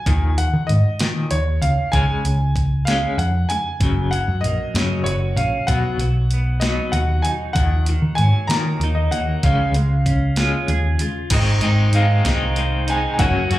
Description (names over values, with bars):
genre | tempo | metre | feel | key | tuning
indie rock | 64 BPM (dotted quarters) | 6/8 | straight | unclear | A4 = 440 Hz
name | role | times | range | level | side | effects
clear upright piano | melody | 0.0-13.6 s | Db5 to Bb5 | -25 LUFS | equal | slapback echo, analog delay
overdriven electric guitar | riff | 0.0-13.6 s | Eb2 to Gb4 | -25 LUFS | left 4 dB | tremolo, slapback echo
hollow-body short-scale picked electric bass | bass | 0.1-13.6 s | Gb1 to Eb3 | -18 LUFS | equal | none
clean 12-bit digital drum machine | drums | 0.1-13.6 s | crash cymbal, hi-hat, kick drum, snare drum | -23 LUFS | equal | none
raw garage guitar | riff | 3.8-13.6 s | Eb2 to Ab4 | -27 LUFS | right 4 dB | overdrive, lush chorus, slapback echo, analog delay
room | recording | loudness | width
little or no reverb | live gig heard through the venue's PA, club reverb | -16 LUFS | side -15 dB against mid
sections
0.0-11.3 A section; 11.3-13.6 B section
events
none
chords
0.1 Eb5; 1.9 Db; 3.8 Gb; 5.7 B; 7.6 Ebm; 9.4 Db; 11.3 Ab6